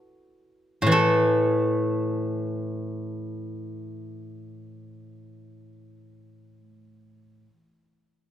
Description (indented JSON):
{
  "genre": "chinese traditional, Chinese solo plucked strings",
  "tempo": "free time",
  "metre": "none",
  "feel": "none",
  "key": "unclear",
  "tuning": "A4 = 438 Hz",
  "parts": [
    { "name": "steel-string zither", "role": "solo", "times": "0.8-7.5 s", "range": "A2 to A4", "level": "-23 LUFS", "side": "equal", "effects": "none" }
  ],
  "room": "moderate recital hall reverb, RT60 1.2 s",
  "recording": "none",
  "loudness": "-22 LUFS",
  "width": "side -11 dB against mid",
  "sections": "0.9-4.9 A section",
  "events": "none",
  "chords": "none",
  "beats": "free time"
}